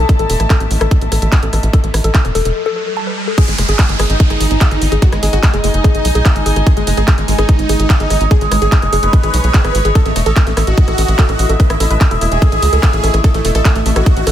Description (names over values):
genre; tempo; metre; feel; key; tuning
psychedelic trance; 146 BPM; 4/4; straight; unclear; A4 = 443 Hz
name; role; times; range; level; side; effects
overtone-sweeping drone; sustained chords; 0.0-14.3 s; D#5; -23 LUFS; equal; chorus, built-in reverb, sidechain pumping
tight sequencer bass; bass; 0.0-14.3 s; E1 to C#2; -15 LUFS; equal; none
rich chamber string section; texture; 0.0-14.3 s; G#3 to A5; -25 LUFS; equal; sidechain pumping
electronic kick drum; drums; 0.1-14.1 s; none; -13 LUFS; equal; studio reverb
techno drum kit; drums; 0.1-14.3 s; crash cymbal, handclaps, hi-hat, rim click; -21 LUFS; right 1 dB; overdrive, studio reverb
riser and downlifter; sound effects; 1.7-6.7 s; none; -24 LUFS; right 2 dB; none
woody wave-folded pluck; riff; 0.2-14.3 s; G#4 to A5; -22 LUFS; moving between left 7 dB and right 9 dB; chorus, auto-pan, sidechain pumping, ping-pong delay
dense compressed supersaw; melody; 3.4-14.3 s; G#3 to B4; -20 LUFS; right 1 dB; phaser, sidechain pumping, ping-pong delay
room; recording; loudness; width
little or no reverb; dense, heavily limited modern master; -10 LUFS; side -11 dB against mid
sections
0.0-3.4 A section; 3.4-14.3 B section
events
riser 1.7-3.4; break 2.6-3.4; drop 3.4-14.3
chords
0.0 A5; 3.4 G#5; 10.0 A5